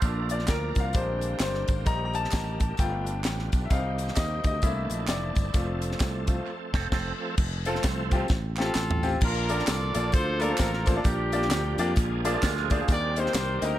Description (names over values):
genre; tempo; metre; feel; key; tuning
uptempo gospel; 131 BPM; 4/4; swing 61% on 8ths; Bb major; A4 = 441 Hz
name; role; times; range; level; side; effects
electric guitar with an envelope filter; second line; 0.0-0.3, 6.7-7.1, 12.3-13.1 s; F3 to A4; -37 LUFS; right 10 dB; tremolo, dub echo
bright grand piano; accompaniment; 0.0-13.7 s; Bb2 to Bb5; -31 LUFS; left 2 dB; dub echo
bright tonewheel organ; sustained chords; 0.0-13.8 s; D3 to Bb4; -36 LUFS; right 3 dB; slow rotary speaker, chorus vibrato
fingered electric bass; bass; 0.0-13.8 s; F1 to F2; -30 LUFS; equal; none
tight funk drum kit; drums; 0.0-13.7 s; crash cymbal, hi-hat, kick drum, snare drum, toms; -27 LUFS; equal; none
tambourine and handclaps; percussion; 0.0-13.7 s; none; -40 LUFS; right 1 dB; dub echo
warm horn section; melody; 8.6-13.8 s; C4 to D5; -30 LUFS; equal; dub echo
room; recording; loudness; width
light reverb; echo-heavy mix; -24 LUFS; side -13 dB against mid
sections
0.0-7.4 A section; 7.4-9.2 B section; 9.2-13.8 C section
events
grand piano solo 0.0-7.4; band accent 6.5-7.4; tonewheel organ solo 7.4-9.2; drum fill 8.3-9.2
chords
0.0 Bb; 0.9 Bb13; 1.9 Eb/Bb; 2.8 G7; 3.7 Cm; 4.6 C13; 5.5 F; 9.2 Bbmaj7; 11.0 Gm7/Bb; 12.0 Bb7; 12.9 Eb6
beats
| 0.03 0.49 0.95 1.41 | 1.87 2.33 2.79 3.25 | 3.71 4.17 4.63 5.09 | 5.55 6.01 6.46 6.92 | 7.38 7.84 8.30 8.76 | 9.22 9.67 10.13 10.59 | 11.05 11.51 11.96 12.42 | 12.88 13.34